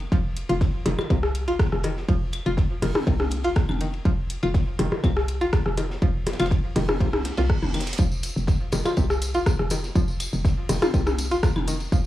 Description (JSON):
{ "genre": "minimal techno", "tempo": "122 BPM", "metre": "4/4", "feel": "straight", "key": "unclear", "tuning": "A4 = 440 Hz", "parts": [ { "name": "hollow knocking FM bass", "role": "bass", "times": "0.0-12.1 s", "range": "F1 to C2", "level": "-27 LUFS", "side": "equal", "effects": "sidechain pumping" }, { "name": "deep reggae drum kit", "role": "drums", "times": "0.0-12.0 s", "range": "hi-hat, ride cymbal, snare drum", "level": "-40 LUFS", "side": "equal", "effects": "high-pass filter on cymbals, high-pass filter on hats, high-pass filter on snare, high-pass filter on room" }, { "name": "string-like resonator pluck", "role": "riff", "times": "0.1-12.0 s", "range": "C3 to F4", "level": "-29 LUFS", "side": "equal", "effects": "chorus, sidechain pumping, tape echo" }, { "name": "electronic kick drum", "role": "drums", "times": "0.1-12.0 s", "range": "none", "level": "-22 LUFS", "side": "equal", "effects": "none" }, { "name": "house drum kit", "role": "drums", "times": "0.4-11.8 s", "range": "hi-hat, ride cymbal, rim click", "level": "-33 LUFS", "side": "left 1 dB", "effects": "none" }, { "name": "minimal click drum kit", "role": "percussion", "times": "0.9-11.7 s", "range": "claves, percussion blips, rim click, toms", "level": "-28 LUFS", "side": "left 1 dB", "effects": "overdrive, analog delay" }, { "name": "reverse cymbal", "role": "sound effects", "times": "7.2-8.0 s", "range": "none", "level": "-38 LUFS", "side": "right 5 dB", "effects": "none" }, { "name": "tambourine", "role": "percussion", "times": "8.0-12.0 s", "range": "none", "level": "-36 LUFS", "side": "left 1 dB", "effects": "none" } ], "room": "small room ambience", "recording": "dry, gritty hardware recording, transformer saturation, studio ambience", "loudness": "-21 LUFS", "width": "side -14 dB against mid", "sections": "0.0-12.1 A section", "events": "reverse cymbal 7.2-8.0; drum fill 7.7", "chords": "0.0 F5", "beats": "| 0.12 0.61 1.10 1.59 | 2.09 2.58 3.07 3.56 | 4.05 4.54 5.04 5.53 | 6.02 6.51 7.00 7.50 | 7.99 8.48 8.97 9.46 | 9.96 10.45 10.94 11.43 | 11.92" }